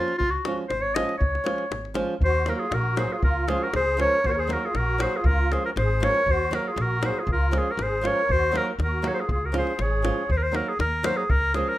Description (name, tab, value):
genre	balkan folk, Balkan wedding band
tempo	119 BPM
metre	2/4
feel	straight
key	unclear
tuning	A4 = 442 Hz
part	bright clarinet	melody	0.0-11.8 s	F4 to Eb5	-25 LUFS	left 1 dB	none
part	flamenco guitar	accompaniment	0.0-11.7 s	F3 to Gb4	-30 LUFS	right 3 dB	none
part	davul	percussion	0.1-11.7 s	none	-29 LUFS	left 1 dB	none
part	upright bass	bass	0.2-11.6 s	Ab1 to Eb2	-26 LUFS	equal	none
part	musette accordion	second line	2.2-10.3 s	F4 to Bb4	-32 LUFS	right 2 dB	none
room	moderate studio reverb, RT60 0.7 s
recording	rough home demo mix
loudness	-22 LUFS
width	side -15 dB against mid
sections	0.0-2.2 A section; 2.2-10.3 B section; 10.3-11.8 B section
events	none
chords	0.2 Db; 2.2 Ebm; 3.2 Db; 4.2 Ebm; 5.3 Db; 6.3 Ebm; 7.3 Db; 8.3 Ebm; 9.3 Db; 10.3 Ebm